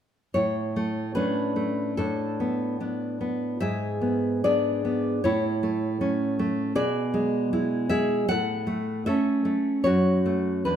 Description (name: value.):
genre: romantic piece for solo classical guitar.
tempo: 71-81 BPM.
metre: 2/4.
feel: rubato.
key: A major.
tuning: A4 = 440 Hz.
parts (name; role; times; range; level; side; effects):
nylon-string guitar; solo; 0.3-10.8 s; E2 to F#5; -23 LUFS; equal; none.
room: moderate recital hall reverb, RT60 1.4 s.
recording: none.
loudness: -23 LUFS.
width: side -9 dB against mid.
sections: 0.3-10.8 A section.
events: none.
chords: 0.3 A; 2.0 Bm7/A; 3.6 E7/G#; 5.2 A; 6.8 E7/B; 8.3 A; 9.9 F#m.